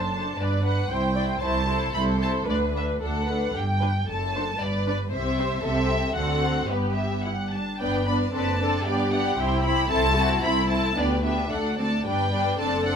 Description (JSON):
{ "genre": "quick classical-period movement for string orchestra", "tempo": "106-117 BPM", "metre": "2/4", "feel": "rubato", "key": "G major", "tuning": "A4 = 441 Hz", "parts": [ { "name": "rich studio violin section", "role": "melody", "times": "0.0-13.0 s", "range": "B4 to B5", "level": "-28 LUFS", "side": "left 1 dB", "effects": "none" }, { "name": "warm studio violin section", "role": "second line", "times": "0.0-13.0 s", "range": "E4 to D5", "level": "-30 LUFS", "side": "left 2 dB", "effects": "none" }, { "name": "warm studio viola section", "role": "accompaniment", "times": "0.0-13.0 s", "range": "G3 to C5", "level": "-28 LUFS", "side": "equal", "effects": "none" }, { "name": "clear studio double bass section", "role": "bass", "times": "0.0-13.0 s", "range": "F#1 to D2", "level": "-29 LUFS", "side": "right 1 dB", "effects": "none" }, { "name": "rich studio cello section", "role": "bass", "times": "0.0-13.0 s", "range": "C2 to B4", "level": "-29 LUFS", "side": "right 1 dB", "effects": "none" } ], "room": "light reverb", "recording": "none", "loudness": "-22 LUFS", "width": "side -7 dB against mid", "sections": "0.0-7.8 A section; 7.8-13.0 A section", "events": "none", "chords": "0.4 G; 0.9 C; 2.5 Bm/D; 3.0 D; 3.6 G; 4.1 D7/F#; 4.6 G; 5.1 C; 5.6 Am/C; 6.2 D7; 6.7 G; 8.3 D7/F#; 8.9 G; 9.4 C; 9.9 Am/C; 11.0 G/D; 11.5 D; 12.1 G", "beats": "| 0.40 0.91 | 1.42 1.94 | 2.48 3.02 | 3.55 4.08 | 4.60 5.12 | 5.63 6.15 | 6.69 7.25 | 7.81 8.35 | 8.87 9.38 | 9.90 10.42 | 10.97 11.52 | 12.06 12.60" }